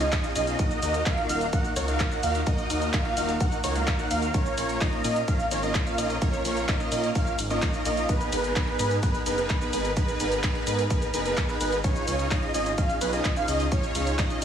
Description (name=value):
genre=EDM, festival progressive house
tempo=128 BPM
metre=4/4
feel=straight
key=Eb minor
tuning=A4 = 435 Hz
part: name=wide unison lead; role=arpeggios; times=0.0-14.4 s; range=Cb5 to Gb5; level=-29 LUFS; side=right 1 dB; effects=ensemble chorus, cassette tape, sidechain pumping, dub echo
part: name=big supersaw lead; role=riff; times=0.0-14.4 s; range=Bb3 to Gb5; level=-29 LUFS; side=equal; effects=sidechain pumping, dub echo
part: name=wide detuned saw bass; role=bass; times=0.0-14.4 s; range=Eb1 to Bb2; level=-30 LUFS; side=equal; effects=chorus, sidechain pumping
part: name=big-room dance drum kit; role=drums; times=0.0-14.4 s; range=handclaps, hi-hat, ride cymbal, shaker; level=-33 LUFS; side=equal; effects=none
part: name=electronic kick drum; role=drums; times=0.1-14.3 s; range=none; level=-27 LUFS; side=equal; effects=none
room=light reverb, digital ambience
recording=heavily compressed radio sound, studio ambience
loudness=-23 LUFS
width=side -8 dB against mid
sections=0.0-14.4 A section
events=none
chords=0.0 Dbadd9; 0.6 Ebm; 4.3 Bbm; 8.1 Abmadd9; 11.8 Dbadd9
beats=0.12 | 0.59 1.06 1.53 2.00 | 2.47 2.94 3.40 3.87 | 4.34 4.81 5.28 5.75 | 6.22 6.68 7.15 7.62 | 8.09 8.56 9.03 9.50 | 9.97 10.44 10.90 11.37 | 11.84 12.31 12.78 13.25 | 13.72 14.19